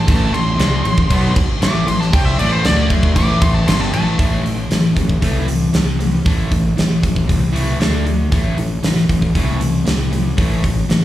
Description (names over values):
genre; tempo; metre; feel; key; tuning
hard rock; 116 BPM; 4/4; straight; A minor; A4 = 443 Hz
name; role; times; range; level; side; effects
smooth overdriven lead guitar; melody; 0.0-4.2 s; C5 to D6; -22 LUFS; equal; slapback echo
overdriven semi-hollow guitar; riff; 0.0-11.0 s; G2 to D4; -22 LUFS; equal; slapback echo
fuzz fingered electric bass; bass; 0.0-11.0 s; G1 to D2; -17 LUFS; equal; overdrive
huge arena drum kit; drums; 0.1-11.0 s; crash cymbal, hi-hat, kick drum, snare drum; -17 LUFS; equal; none
room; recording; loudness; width
small room reverb; live gig heard through the venue's PA, club reverb; -14 LUFS; side -14 dB against mid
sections
0.0-4.2 A section; 4.2-11.0 B section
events
lead electric guitar solo 0.0-4.2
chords
0.0 Am; 2.6 D5; 3.2 A5; 4.2 Am; 7.8 D5; 8.3 Am